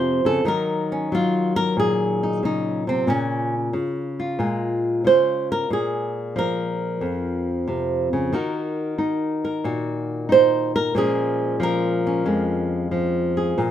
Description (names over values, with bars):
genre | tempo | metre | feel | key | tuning
solo jazz | 92 BPM | 4/4 | swing 69% on 8ths | Bb minor | A4 = 439 Hz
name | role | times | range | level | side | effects
flamenco guitar | solo | 0.0-13.7 s | F2 to C5 | -20 LUFS | equal | none
room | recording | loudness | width
moderate small room reverb, RT60 0.5 s | minimal, uncompressed stereo recording | -20 LUFS | side -10 dB against mid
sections
0.0-13.7 A section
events
nylon-string guitar solo 0.0-13.7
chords
0.4 Ebm7; 3.1 Bbm7; 8.3 Ebm; 10.9 Bbm7